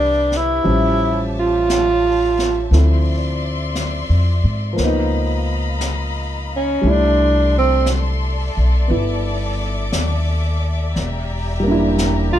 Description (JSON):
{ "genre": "jazz ballad", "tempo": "58 BPM", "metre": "4/4", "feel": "swing 68% on 8ths", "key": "C major", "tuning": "A4 = 440 Hz", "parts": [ { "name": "mellow tenor saxophone", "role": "melody", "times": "0.0-12.4 s", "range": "C4 to F4", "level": "-16 LUFS", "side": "right 2 dB", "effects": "plate reverb" }, { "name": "warm grand piano", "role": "accompaniment", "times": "0.0-12.4 s", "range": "E3 to E5", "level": "-23 LUFS", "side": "equal", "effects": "none" }, { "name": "warm studio string section", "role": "sustained chords", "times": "0.0-12.4 s", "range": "C4 to D6", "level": "-28 LUFS", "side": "left 3 dB", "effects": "none" }, { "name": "upright bass", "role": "bass", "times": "0.0-12.4 s", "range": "E1 to Ab2", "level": "-19 LUFS", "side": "equal", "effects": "none" }, { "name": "jazz brush drum kit", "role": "drums", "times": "0.3-12.4 s", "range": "brushed snare drum, hi-hat, snare drum", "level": "-29 LUFS", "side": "left 2 dB", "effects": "none" } ], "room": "light reverb", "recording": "dark, warm production", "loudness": "-16 LUFS", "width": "side -11 dB against mid", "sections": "0.0-12.4 A section", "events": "tenor saxophone solo 0.0-12.4", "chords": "0.0 Cmaj7; 0.6 A7b13; 2.7 Dm9; 4.8 Db13; 6.8 C69; 11.0 Em7b5" }